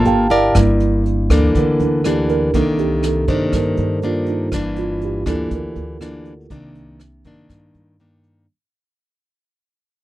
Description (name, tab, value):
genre	bossa nova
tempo	121 BPM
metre	4/4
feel	straight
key	G minor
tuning	A4 = 444 Hz
part	mellow tine electric piano	accompaniment	0.0-8.5 s	Eb3 to A5	-20 LUFS	right 4 dB	medium stereo tremolo
part	nylon-string guitar	accompaniment	0.0-8.5 s	G2 to D5	-19 LUFS	left 2 dB	none
part	upright bass	bass	0.0-8.4 s	G1 to G2	-21 LUFS	equal	none
part	vintage brush drum kit	drums	0.1-8.4 s	hi-hat, kick drum, rim click	-24 LUFS	equal	none
room	light reverb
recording	dry, close 1970s-style studio recording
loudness	-15 LUFS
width	side -15 dB against mid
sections	0.6-8.5 A section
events	tine electric piano fill 0.0-0.6; fade-out 0.6-8.5; tine electric piano solo 0.6-8.5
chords	0.1 Gm9; 0.6 Gm6; 2.5 Cm9; 4.5 Gm6; 6.5 Cm9